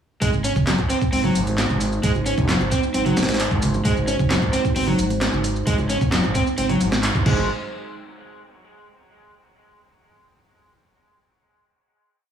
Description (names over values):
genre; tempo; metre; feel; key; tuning
breakbeat, breaks; 132 BPM; 4/4; straight; Ab mixolydian; A4 = 440 Hz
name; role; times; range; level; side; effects
dark analog pad; sustained chords; 1.0-7.5 s; Ab3 to C5; -28 LUFS; right 1 dB; chorus, phaser, sidechain pumping
raw garage guitar; riff; 0.2-7.5 s; Gb3 to Db4; -24 LUFS; equal; overdrive, vintage 12-bit sampler grit, dub echo
upright bass; bass; 0.2-7.5 s; Gb1 to Ab1; -24 LUFS; right 1 dB; tube saturation
breakbeat sampler-style drum kit; drums; 0.2-7.4 s; crash cymbal, hi-hat, kick drum, snare drum; -24 LUFS; equal; small room ambience
electronic shaker and handclaps; drums; 0.2-7.2 s; none; -29 LUFS; equal; small room ambience
congas and bongos; percussion; 0.3-7.5 s; none; -28 LUFS; right 2 dB; none
room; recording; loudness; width
light reverb; studio reverb; -18 LUFS; side -8 dB against mid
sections
0.2-7.5 drop; 7.5-9.3 final hit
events
drop 0.2-7.5; band accent 7.0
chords
0.2 Ab7; 7.5 N.C.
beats
| 0.21 0.67 1.12 1.58 | 2.03 2.49 2.94 3.40 | 3.85 4.31 4.76 5.21 | 5.67 6.12 6.58 7.03